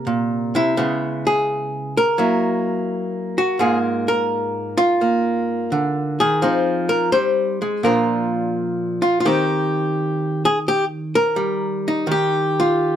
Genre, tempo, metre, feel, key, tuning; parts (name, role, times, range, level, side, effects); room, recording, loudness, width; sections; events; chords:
solo jazz; 85 BPM; 4/4; swing 68% on 8ths; Eb major; A4 = 442 Hz
archtop guitar, miked and amplified; solo; 0.0-13.0 s; Ab2 to C5; -17 LUFS; equal
light reverb; close, detailed microphones; -17 LUFS; side -10 dB against mid
0.0-13.0 A section
0.0 C5; 0.8 Dbm7; 2.2 Gb7; 3.6 Absus2; 6.4 Fm7; 7.8 Bb; 9.2 Eb6